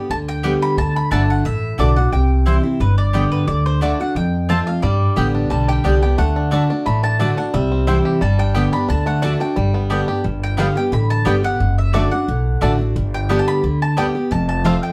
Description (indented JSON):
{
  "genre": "bluegrass",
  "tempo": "177 BPM",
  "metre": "4/4",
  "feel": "straight",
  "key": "G major",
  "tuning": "A4 = 440 Hz",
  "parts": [
    { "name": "mandolin", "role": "melody", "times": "0.0-14.9 s", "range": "B4 to B5", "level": "-27 LUFS", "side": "equal", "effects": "none" },
    { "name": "picked steel-string acoustic guitar", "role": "accompaniment", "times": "0.0-14.9 s", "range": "F2 to G4", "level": "-22 LUFS", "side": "equal", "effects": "none" },
    { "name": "upright bass", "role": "bass", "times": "0.1-14.8 s", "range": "F1 to G2", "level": "-21 LUFS", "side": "equal", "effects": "none" },
    { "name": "mandolin", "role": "stabs", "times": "0.4-14.7 s", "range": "A3 to A5", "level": "-28 LUFS", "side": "equal", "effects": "none" },
    { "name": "bluegrass banjo", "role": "melody", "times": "4.8-14.7 s", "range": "G3 to G4", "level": "-28 LUFS", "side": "equal", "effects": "none" }
  ],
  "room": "moderate studio ambience, RT60 0.5 s",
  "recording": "heard from further back in the room",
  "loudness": "-18 LUFS",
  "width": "mono",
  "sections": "0.0-10.2 A section; 10.2-14.9 B section",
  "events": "none",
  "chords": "0.0 G; 0.8 D; 2.1 C; 2.8 G; 3.5 D; 4.2 F; 4.8 G; 6.2 D; 7.5 C; 8.2 G; 8.9 D; 9.6 G; 11.6 D/F#; 13.0 G; 14.3 F",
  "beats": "0.10 0.44 | 0.78 1.11 1.45 1.79 | 2.13 2.47 2.80 3.14 | 3.48 3.82 4.16 4.49 | 4.83 5.17 5.51 5.85 | 6.18 6.52 6.86 7.20 | 7.54 7.88 8.21 8.55 | 8.89 9.23 9.57 9.91 | 10.24 10.58 10.92 11.26 | 11.60 11.94 12.28 12.62 | 12.96 13.29 13.63 13.97 | 14.31 14.65"
}